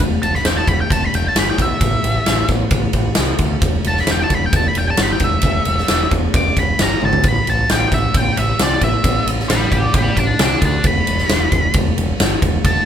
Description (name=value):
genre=blues rock power trio and southern rock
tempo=133 BPM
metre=4/4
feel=straight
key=E minor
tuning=A4 = 440 Hz
part: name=growling picked electric bass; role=bass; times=0.0-12.8 s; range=E1 to D2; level=-20 LUFS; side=equal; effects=overdrive
part: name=big rock drum kit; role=drums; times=0.0-12.8 s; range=kick drum, ride cymbal, snare drum, toms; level=-16 LUFS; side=equal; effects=none
part: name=octave-fuzz lead guitar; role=melody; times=0.2-12.9 s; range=D5 to D6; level=-20 LUFS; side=equal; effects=wah, distortion
room=light reverb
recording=band playing live in one room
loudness=-14 LUFS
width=side -9 dB against mid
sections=0.0-12.9 A section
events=lead electric guitar solo 0.0-12.9; drum fill 7.0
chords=0.0 Em; 1.8 A5; 3.6 N.C.; 7.2 A5; 10.9 E5